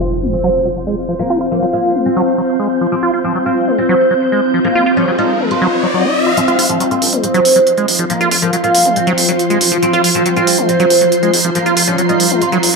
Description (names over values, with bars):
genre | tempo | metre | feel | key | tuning
psychedelic trance | 139 BPM | 4/4 | straight | F minor | A4 = 439 Hz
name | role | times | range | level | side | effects
oud | melody | 0.0-12.8 s | Bb3 to F4 | -17 LUFS | right 1 dB | phaser, low-pass filter, digital delay
swarming drone | sustained chords | 0.5-12.8 s | F3 to F4 | -18 LUFS | left 1 dB | built-in reverb
liquid acid bass | riff | 0.0-12.6 s | F3 to F4 | -18 LUFS | right 1 dB | chorus, auto-pan, digital delay
impact and riser | sound effects | 0.0-6.4 s | none | -21 LUFS | left 2 dB | none
granular cloud pad | texture | 0.0-12.8 s | F4 to Bb5 | -20 LUFS | equal | built-in reverb
electronic hi-hat | drums | 6.4-12.7 s | none | -16 LUFS | right 2 dB | high-pass filter on snare, high-pass filter on hats, high-pass filter on perc, high-pass filter on room
fat analog bass | bass | 6.5-12.7 s | Eb1 to Bb1 | -29 LUFS | equal | none
room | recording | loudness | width
wet digital room reverb, RT60 1.1 s | high-pass filter, low-pass filter | -11 LUFS | side -3 dB against mid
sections
0.0-6.4 A section; 6.4-12.8 B section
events
impact 0.0-1.2; filter sweep on acid bass 0.0-6.4, 6.4-12.8; filter sweep 0.0-6.4; riser 4.5-6.4; build-up 6.4-12.8; filter sweep on oud 6.4-12.8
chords
0.0 F5